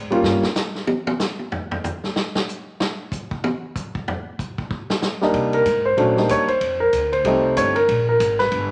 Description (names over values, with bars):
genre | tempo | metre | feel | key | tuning
jazz piano trio | 188 BPM | 4/4 | swing 61% on 8ths | unclear | A4 = 441 Hz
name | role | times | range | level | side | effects
upright bass | bass | 0.0-0.4, 5.3-8.7 s | G1 to C3 | -29 LUFS | equal | none
warm concert grand piano | melody | 0.1-0.4, 5.2-8.7 s | Gb3 to Db5 | -20 LUFS | equal | none
vintage drum kit | drums | 0.1-8.6 s | hi-hat, kick drum, ride cymbal, snare drum, toms | -28 LUFS | equal | none
room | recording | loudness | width
light reverb | none | -21 LUFS | mono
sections
0.0-8.7 A section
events
grand piano solo 0.0-8.7; drum solo 0.2-5.3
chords
0.2 N.C.; 5.3 Cm7; 6.6 F9; 7.9 Absus2